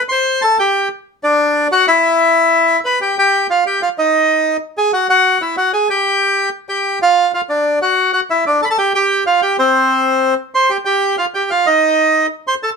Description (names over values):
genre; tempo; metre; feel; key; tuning
tango; 187 BPM; 3/4; rubato; unclear; A4 = 442 Hz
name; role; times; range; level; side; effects
bandoneon; solo; 0.0-12.7 s; C4 to C6; -12 LUFS; equal; none
room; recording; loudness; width
moderate studio reverb, RT60 0.6 s; band playing live in one room; -12 LUFS; side -5 dB against mid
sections
0.0-3.0 A section; 3.0-12.8 B section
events
none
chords
0.1 C5; 1.1 D; 2.0 N.C.; 2.3 E5; 3.0 Fsus2; 4.0 Ebsus4; 4.9 Eadd9; 5.9 N.C.; 6.8 G5; 7.8 D; 8.8 Csus4; 9.7 N.C.; 10.7 Fsus2; 11.7 Cm